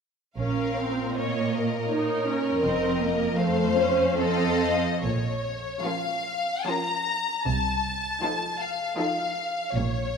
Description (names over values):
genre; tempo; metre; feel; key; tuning
classical, slow romantic movement for string orchestra; 68-84 BPM; 3/4; rubato; Bb minor; A4 = 438 Hz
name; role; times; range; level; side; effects
warm symphonic violin section; melody; 0.4-10.2 s; Db5 to Bb5; -28 LUFS; left 4 dB; none
rich symphonic violin section; second line; 0.4-9.6 s; F4 to Db5; -28 LUFS; left 1 dB; none
warm symphonic viola section; accompaniment; 0.4-9.6 s; F3 to Eb4; -29 LUFS; right 2 dB; none
warm studio double bass section; bass; 0.4-10.2 s; F1 to C2; -31 LUFS; right 3 dB; none
warm symphonic cello section; bass; 0.4-10.2 s; F2 to C3; -31 LUFS; right 3 dB; none
room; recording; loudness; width
wet scoring stage reverb, RT60 2.0 s; minimal, uncompressed stereo recording; -24 LUFS; side -6 dB against mid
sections
0.4-5.0 A section; 5.0-10.2 B section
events
none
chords
0.4 Bbm; 2.6 F7; 5.0 Bbm; 7.5 F7/C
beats
| 0.38 1.17 1.91 | 2.63 3.38 4.19 | 5.04 5.83 6.67 | 7.46 8.23 8.99 | 9.76